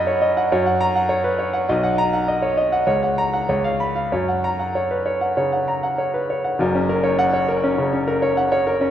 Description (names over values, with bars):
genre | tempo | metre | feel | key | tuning
classical, virtuoso piano study | 93-104 BPM | 4/4 | rubato | F# major | A4 = 437 Hz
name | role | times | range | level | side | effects
bright grand piano | solo | 0.0-8.9 s | F#1 to B5 | -18 LUFS | equal | none
room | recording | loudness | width
wet scoring stage reverb, RT60 1.5 s | none | -18 LUFS | side -10 dB against mid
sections
0.0-6.6 A section; 6.6-8.9 B section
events
none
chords
0.0 B/F#; 0.5 F#; 1.7 Bmaj7; 2.9 F#/C#; 3.5 C#7; 4.1 F#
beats
0.52 1.10 | 1.69 2.28 2.87 3.47 | 4.10 4.74 5.37 5.99 | 6.60 7.19 7.78 8.37